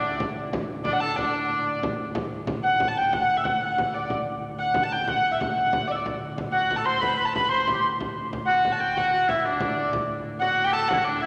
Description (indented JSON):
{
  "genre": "medieval dance",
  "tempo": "123 BPM (dotted quarters)",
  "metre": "6/8",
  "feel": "straight",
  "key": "D mixolydian",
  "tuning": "A4 = 440 Hz",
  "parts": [
    { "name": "dark hurdy-gurdy", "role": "melody", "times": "0.0-11.3 s", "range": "D5 to C6", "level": "-26 LUFS", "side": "equal", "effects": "none" },
    { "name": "clear shawm", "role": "second line", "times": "0.0-1.8, 6.5-11.3 s", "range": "D4 to C5", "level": "-31 LUFS", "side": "equal", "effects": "none" },
    { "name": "pipe organ, flutes", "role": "drone", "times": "0.0-11.3 s", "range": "D2 to A2", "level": "-40 LUFS", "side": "equal", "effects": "none" },
    { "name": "frame drum", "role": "percussion", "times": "0.0-11.3 s", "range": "none", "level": "-35 LUFS", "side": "equal", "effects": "none" }
  ],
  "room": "wet church reverb, RT60 2.8 s",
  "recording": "none",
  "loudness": "-25 LUFS",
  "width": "mono",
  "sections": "0.0-2.1 A section; 2.1-9.9 B section; 9.9-11.3 C section",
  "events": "none",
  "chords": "none"
}